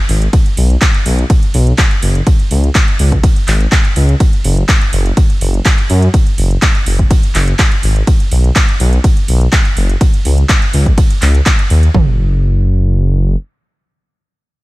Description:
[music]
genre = progressive house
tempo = 124 BPM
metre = 4/4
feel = straight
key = unclear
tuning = A4 = 441 Hz
[part]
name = dark detuned saw bass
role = bass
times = 0.1-13.4 s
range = F#1 to F#2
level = -10 LUFS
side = equal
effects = sidechain pumping
[part]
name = house drum kit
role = drums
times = 0.1-11.9 s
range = handclaps, hi-hat, ride cymbal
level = -18 LUFS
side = equal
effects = studio reverb
[part]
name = house drum kit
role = drums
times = 0.3-12.1 s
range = kick drum, toms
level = -11 LUFS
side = equal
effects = studio reverb
[sound]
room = digital ambience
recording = none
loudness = -9 LUFS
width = side -20 dB against mid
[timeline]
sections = 0.0-11.9 A section; 11.9-14.6 B section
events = drop 0.0-11.9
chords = none

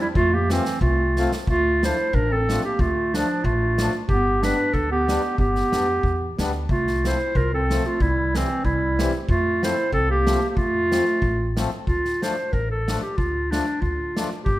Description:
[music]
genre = alpine folk, alpine dance band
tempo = 92 BPM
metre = 2/4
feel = swing 54% on 8ths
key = unclear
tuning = A4 = 442 Hz
[part]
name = breathy clarinet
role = melody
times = 0.0-14.6 s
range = C4 to C5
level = -23 LUFS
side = equal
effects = none
[part]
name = clear clarinet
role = second line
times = 0.0-11.6 s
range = E3 to F4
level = -28 LUFS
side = right 4 dB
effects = none
[part]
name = upright bass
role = bass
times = 0.2-14.6 s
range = G1 to F2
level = -25 LUFS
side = equal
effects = none
[part]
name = street-band drum kit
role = drums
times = 0.2-14.6 s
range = kick drum, snare drum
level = -28 LUFS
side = equal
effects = none
[part]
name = accordion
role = accompaniment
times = 0.5-14.3 s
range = E3 to F4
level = -31 LUFS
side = left 4 dB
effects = none
[sound]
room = moderate recital hall reverb, RT60 1.5 s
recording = none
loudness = -19 LUFS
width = side -16 dB against mid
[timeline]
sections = 0.0-1.5 A section; 1.5-11.9 B section; 11.9-14.6 B section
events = drum fill 1.1-1.5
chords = 0.2 F; 1.5 Dm; 4.1 G; 6.7 F/C; 8.0 C; 9.3 F; 11.9 Dm

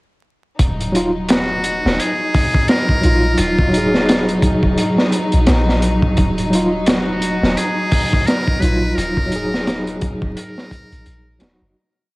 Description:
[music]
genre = trip hop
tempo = 86 BPM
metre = 4/4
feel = swing 58% on 16ths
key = Eb minor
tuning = A4 = 440 Hz
[part]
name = rich chamber string section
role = sustained chords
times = 0.6-11.8 s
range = Gb3 to Eb4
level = -24 LUFS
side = equal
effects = vintage 12-bit sampler grit, cassette tape
[part]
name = soft 808-style bass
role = bass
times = 0.6-11.7 s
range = Eb1 to Bb1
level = -21 LUFS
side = equal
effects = none
[part]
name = crunchy breakbeat drum kit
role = drums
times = 0.6-11.6 s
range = hi-hat, kick drum, snare drum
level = -18 LUFS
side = equal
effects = none
[part]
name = flickering grainy texture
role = texture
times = 1.3-11.8 s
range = Gb3 to Eb4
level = -29 LUFS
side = equal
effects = none
[part]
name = tine electric piano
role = accompaniment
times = 0.9-11.8 s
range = Gb3 to Ab4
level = -20 LUFS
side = equal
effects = overdrive, tremolo, cassette tape
[part]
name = trumpet with metal mute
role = melody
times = 1.3-11.4 s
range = F4 to Cb5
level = -23 LUFS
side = equal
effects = cassette tape, tape echo
[sound]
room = light reverb, small room ambience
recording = home recording on cassette, vinyl crackle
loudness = -14 LUFS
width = side -22 dB against mid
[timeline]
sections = 0.6-11.8 groove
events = fade-out 8.0-11.8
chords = 0.6 Ebmadd9

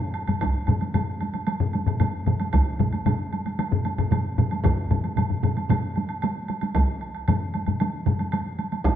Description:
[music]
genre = japanese traditional, taiko drum ensemble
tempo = 114 BPM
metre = 4/4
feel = straight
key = none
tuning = none
[part]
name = woodblock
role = percussion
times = 0.1-9.0 s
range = none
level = -33 LUFS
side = right 4 dB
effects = none
[part]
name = solo taiko drums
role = percussion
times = 0.3-8.2 s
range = none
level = -26 LUFS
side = left 4 dB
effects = none
[part]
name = taiko ensemble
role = percussion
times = 0.3-9.0 s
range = none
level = -28 LUFS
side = right 1 dB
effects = none
[part]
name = taiko ensemble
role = percussion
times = 0.3-8.2 s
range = none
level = -29 LUFS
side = right 4 dB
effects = none
[part]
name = taiko ensemble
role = percussion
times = 0.4-9.0 s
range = none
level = -24 LUFS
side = right 1 dB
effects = none
[sound]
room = wet recital hall reverb, RT60 1.6 s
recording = dark, warm production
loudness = -22 LUFS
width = side -10 dB against mid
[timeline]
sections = 0.4-9.0 A section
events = none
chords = none

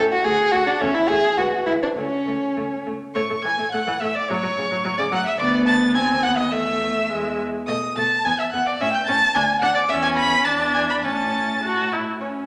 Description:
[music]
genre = quick classical-period movement for string quartet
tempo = 99-112 BPM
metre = 2/4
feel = rubato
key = A major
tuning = A4 = 440 Hz
[part]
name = warm violin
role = melody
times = 0.0-12.3 s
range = B4 to B6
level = -29 LUFS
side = equal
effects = none
[part]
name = dark violin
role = second line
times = 0.0-12.5 s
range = C#4 to B5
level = -24 LUFS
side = equal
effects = none
[part]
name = warm viola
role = accompaniment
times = 0.0-12.5 s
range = C#3 to F#4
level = -27 LUFS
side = equal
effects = none
[part]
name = warm cello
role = bass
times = 0.0-12.5 s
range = C#2 to B2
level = -34 LUFS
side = equal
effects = none
[sound]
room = wet recital hall reverb, RT60 1.5 s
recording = none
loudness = -21 LUFS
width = mono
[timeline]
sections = 0.0-3.2 A section; 3.2-12.2 A section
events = none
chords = 0.3 D; 0.8 A5; 1.4 E9 (rootless); 2.0 A/C#; 3.2 A5; 4.3 F#m/A; 5.4 Bm7/D; 5.9 G#7#9/D#; 6.5 A5/E; 7.1 E; 7.7 B7; 8.2 E5; 8.8 A; 9.3 D; 9.9 E5; 10.5 E7sus4; 11.0 A

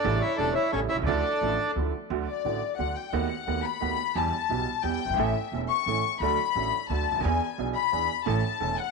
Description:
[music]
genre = tango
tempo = 175 BPM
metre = 3/4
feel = rubato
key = D major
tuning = A4 = 440 Hz
[part]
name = bandoneon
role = melody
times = 0.0-1.7 s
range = C#4 to E5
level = -28 LUFS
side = right 3 dB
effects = none
[part]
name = warm studio violin section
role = second line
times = 0.0-8.9 s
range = A4 to C#6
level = -28 LUFS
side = left 13 dB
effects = none
[part]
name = bright upright piano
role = accompaniment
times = 0.0-8.7 s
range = E1 to A4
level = -30 LUFS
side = right 12 dB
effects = none
[part]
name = upright bass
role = bass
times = 0.0-8.7 s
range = E1 to E2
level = -31 LUFS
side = equal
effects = none
[sound]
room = moderate plate reverb, RT60 2.9 s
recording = 1960s-style stereo with parts hard left and right, nothing above 10.5 kHz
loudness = -25 LUFS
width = side -3 dB against mid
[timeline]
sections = 0.0-2.1 A section; 2.1-8.9 B section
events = violin section solo 2.1-8.9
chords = 0.0 A7; 1.1 Dmadd9; 2.1 D; 3.1 B7/D#; 4.2 Em; 5.2 A; 6.2 D; 7.2 E7; 8.3 A

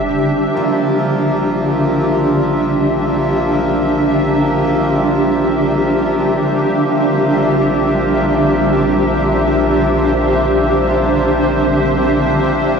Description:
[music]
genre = ambient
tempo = free time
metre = none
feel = none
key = unclear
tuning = A4 = 438 Hz
[part]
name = granular cloud pad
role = sustained chords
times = 0.0-12.8 s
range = D4 to E5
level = -13 LUFS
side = equal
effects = built-in reverb, shimmer reverb
[part]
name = felt-muted upright piano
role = arpeggios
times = 0.0-0.5 s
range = none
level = barely audible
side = none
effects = none
[part]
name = warm sub bass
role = bass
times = 0.0-12.8 s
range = F1 to Bb1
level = -27 LUFS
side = equal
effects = none
[part]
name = hand-pumped harmonium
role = drone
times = 0.5-12.8 s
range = F3 to Bb3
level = -21 LUFS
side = equal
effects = none
[sound]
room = wet cathedral reverb, RT60 6.7 s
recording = in a vast, echoing space, cassette tape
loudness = -12 LUFS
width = side -6 dB against mid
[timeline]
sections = 0.5-12.8 A section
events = fade-in on sub bass 0.5-12.8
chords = 0.0 Fmaj7(no3); 0.5 C9/Bb

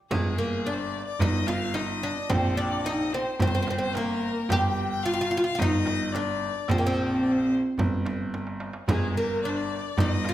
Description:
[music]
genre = Arabic maqam ensemble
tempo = 109 BPM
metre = 4/4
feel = straight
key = G maqam kurd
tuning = A4 = 438 Hz
[part]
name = oud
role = melody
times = 0.1-10.3 s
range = Ab3 to G4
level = -28 LUFS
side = equal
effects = none
[part]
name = clear violin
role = second line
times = 0.1-10.3 s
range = Ab4 to G5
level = -33 LUFS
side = left 6 dB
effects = none
[part]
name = clear baby grand piano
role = bass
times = 0.1-10.3 s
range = G1 to Bb1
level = -30 LUFS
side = right 1 dB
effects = none
[part]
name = darbuka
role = percussion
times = 0.1-10.3 s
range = none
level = -30 LUFS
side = right 1 dB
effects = none
[part]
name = frame drum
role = percussion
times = 0.1-10.3 s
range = none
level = -32 LUFS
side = right 1 dB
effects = none
[sound]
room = wet recital hall reverb, RT60 1.4 s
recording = none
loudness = -24 LUFS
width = side -13 dB against mid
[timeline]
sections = 0.1-10.3 A section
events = drum fill 8.3-8.9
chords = none

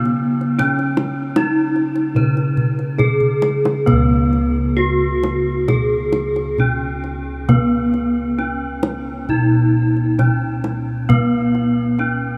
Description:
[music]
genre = Javanese gamelan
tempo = 66-84 BPM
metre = 4/4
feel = straight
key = C# slendro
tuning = A4 = 439 Hz
[part]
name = gamelan-type bronze metallophone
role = melody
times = 0.0-12.4 s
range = B3-40c to B4-40c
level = -21 LUFS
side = equal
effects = none
[part]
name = gamelan-type bossed gongs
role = bass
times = 0.0-12.4 s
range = C#2 to B4-40c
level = -23 LUFS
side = equal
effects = none
[part]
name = kendang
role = percussion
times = 0.1-12.1 s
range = none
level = -23 LUFS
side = equal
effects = none
[sound]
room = moderate huge ambient reverb, RT60 7.7 s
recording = in a vast, echoing space, small room ambience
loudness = -18 LUFS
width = mono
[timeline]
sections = 0.0-3.9 A section; 3.9-12.4 B section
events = drum fill 3.2-3.9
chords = none

